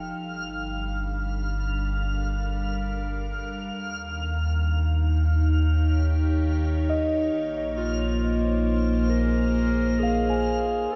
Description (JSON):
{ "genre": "ambient", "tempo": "67 BPM", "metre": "4/4", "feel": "straight", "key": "Bb dorian", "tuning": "A4 = 441 Hz", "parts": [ { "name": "evolving wavetable pad", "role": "sustained chords", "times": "0.0-11.0 s", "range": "Eb3 to F5", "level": "-31 LUFS", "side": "equal", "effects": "chorus, built-in reverb" }, { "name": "muted felt-like synth keys", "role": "arpeggios", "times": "0.0-0.2, 6.9-11.0 s", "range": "Eb5 to Ab5", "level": "-34 LUFS", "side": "equal", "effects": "chorus, tape echo" }, { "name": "warm sub bass", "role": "bass", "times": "0.0-11.0 s", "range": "F1 to Eb2", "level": "-27 LUFS", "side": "equal", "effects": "none" }, { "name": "backwards swelling texture", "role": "texture", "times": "0.0-11.0 s", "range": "F6", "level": "-39 LUFS", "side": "equal", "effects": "built-in reverb" }, { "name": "mellow clarinet", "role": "melody", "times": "7.8-11.0 s", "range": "F4 to Bb4", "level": "-32 LUFS", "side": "equal", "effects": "tape echo" } ], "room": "wet echo chamber reverb, RT60 2.4 s", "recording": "echo-heavy mix, nothing above 7.6 kHz", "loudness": "-25 LUFS", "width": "mono", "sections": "0.0-11.0 A section", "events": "fade-in on ambient pad 0.0-11.0; fade-in on clarinet 0.0-11.0", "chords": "0.2 Gm9; 3.8 Eb7; 7.3 Bbm7" }